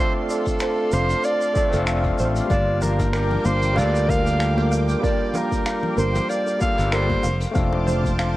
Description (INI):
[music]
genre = sunset chillout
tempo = 95 BPM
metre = 4/4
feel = swing 54% on 16ths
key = G minor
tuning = A4 = 439 Hz
[part]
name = clear soprano saxophone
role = melody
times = 0.0-7.4 s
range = A4 to F5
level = -25 LUFS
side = right 1 dB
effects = ping-pong delay
[part]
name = overdriven tine electric piano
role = accompaniment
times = 0.0-8.4 s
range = G3 to A5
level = -26 LUFS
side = equal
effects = auto-pan, ping-pong delay
[part]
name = lush unison pad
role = sustained chords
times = 0.0-8.4 s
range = Bb3 to D6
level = -30 LUFS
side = equal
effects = chorus, phaser
[part]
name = soft round pluck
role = arpeggios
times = 0.0-8.4 s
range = A4 to F5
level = -30 LUFS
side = right 2 dB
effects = wide subtle chorus, cassette tape, ping-pong delay
[part]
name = vintage brush drum kit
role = drums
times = 0.3-8.3 s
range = finger snaps, hi-hat, shaker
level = -34 LUFS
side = equal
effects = none
[part]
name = electronic kick drum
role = drums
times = 0.5-8.2 s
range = none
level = -25 LUFS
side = equal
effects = overdrive
[part]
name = fretless electric bass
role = bass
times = 0.9-8.4 s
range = F1 to D2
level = -22 LUFS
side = equal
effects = none
[part]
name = congas and bongos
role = percussion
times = 2.5-8.2 s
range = none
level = -32 LUFS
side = left 3 dB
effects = none
[sound]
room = light reverb, small room ambience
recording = worn, warbling old tape, cassette tape, warbly pitch drift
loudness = -18 LUFS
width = side -16 dB against mid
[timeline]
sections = 0.0-8.4 A section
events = none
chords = 0.0 Dm7; 2.5 Gm7; 7.2 Dm7/F